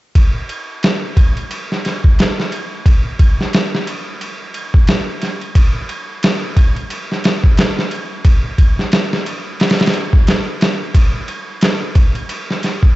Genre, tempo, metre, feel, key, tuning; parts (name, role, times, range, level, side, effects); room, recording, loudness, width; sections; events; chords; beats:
trip hop; 89 BPM; 4/4; swing 58% on 16ths
trip hop sampler-style drum kit; drums; 0.2-13.0 s; kick drum, ride cymbal, snare drum; -13 LUFS; equal
little or no reverb; dark, warm production, nothing above 8.0 kHz; -13 LUFS; side -18 dB against mid
0.2-10.9 A section; 10.9-13.0 B section
| 0.16 0.84 1.51 2.18 | 2.86 3.53 4.21 4.88 | 5.55 6.23 6.90 7.58 | 8.25 8.93 9.60 10.27 | 10.95 11.62 12.30